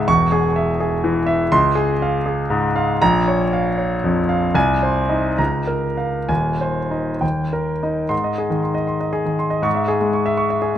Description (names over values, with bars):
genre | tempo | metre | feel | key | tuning
classical, romantic character piece for solo piano | 62-84 BPM (dotted quarters) | 6/8 | rubato | Ab major | A4 = 442 Hz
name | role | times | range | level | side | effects
warm concert grand piano | solo | 0.0-10.8 s | Eb1 to C#6 | -17 LUFS | equal | none
room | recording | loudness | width
light reverb | close, detailed microphones | -17 LUFS | side -10 dB against mid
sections
0.0-8.1 A section; 8.1-10.8 B section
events
none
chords
0.1 C#m/E; 1.5 Dbmaj7; 3.0 Bbm; 4.5 Ab/C; 5.4 Bbm/Db; 6.3 Ab/Eb; 7.2 Eb; 8.1 Ab; 9.7 Dbm/Ab